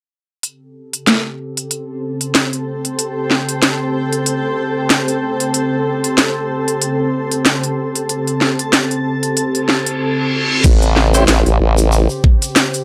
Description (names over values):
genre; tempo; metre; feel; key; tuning
glitch hop; 94 BPM; 4/4; swing 57% on 16ths; unclear; A4 = 439 Hz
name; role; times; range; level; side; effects
warbly tape-like pad; sustained chords; 1.0-12.8 s; C#3 to B#4; -23 LUFS; equal; chorus, built-in reverb, sidechain pumping
drum and bass drum kit; drums; 0.4-12.8 s; crash cymbal, hi-hat, rim click, snare drum; -17 LUFS; equal; none
granular cloud pad; texture; 1.7-12.8 s; A4 to A5; -26 LUFS; equal; built-in reverb, sidechain pumping
reverse cymbal; sound effects; 9.8-10.6 s; none; -22 LUFS; equal; none
formant-sweep wobble bass; bass; 10.6-12.1 s; A1; -15 LUFS; equal; chorus
electronic kick drum; drums; 10.6-12.4 s; none; -13 LUFS; equal; none
tube shaker; percussion; 10.6-12.8 s; none; -29 LUFS; equal; none
tonewheel organ; stabs; 11.1-11.2 s; C#4 to B#4; -20 LUFS; equal; fast rotary speaker, sidechain pumping, analog delay
room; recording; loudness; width
light reverb; dry, gritty hardware recording, transformer saturation, cassette tape; -16 LUFS; mono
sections
0.4-10.6 A section; 10.6-12.8 B section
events
reverse cymbal 9.8-10.6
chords
0.4 A7#9